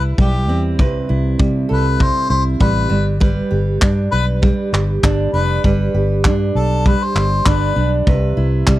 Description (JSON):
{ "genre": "acoustic pop", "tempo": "99 BPM", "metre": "4/4", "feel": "swing 55% on 16ths", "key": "unclear", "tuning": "A4 = 443 Hz", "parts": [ { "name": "mellow harmonica", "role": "melody", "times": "0.0-7.9 s", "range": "G4 to C5", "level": "-22 LUFS", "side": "left 4 dB", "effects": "tape echo" }, { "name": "fingerpicked steel-string acoustic guitar", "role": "accompaniment", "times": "0.0-8.8 s", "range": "C3 to B4", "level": "-20 LUFS", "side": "right 2 dB", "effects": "none" }, { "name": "vintage muted fingered electric bass", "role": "bass", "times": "0.0-8.8 s", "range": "F1 to C3", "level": "-17 LUFS", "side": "equal", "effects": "none" }, { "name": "loose indie drum kit", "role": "drums", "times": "0.2-8.8 s", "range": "handclaps, kick drum", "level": "-16 LUFS", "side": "equal", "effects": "none" } ], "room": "little or no reverb", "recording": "dry, close 1970s-style studio recording", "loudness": "-14 LUFS", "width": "side -15 dB against mid", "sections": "0.0-8.8 A section", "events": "none", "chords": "0.0 Cmaj7; 2.9 G; 8.1 Cmaj7" }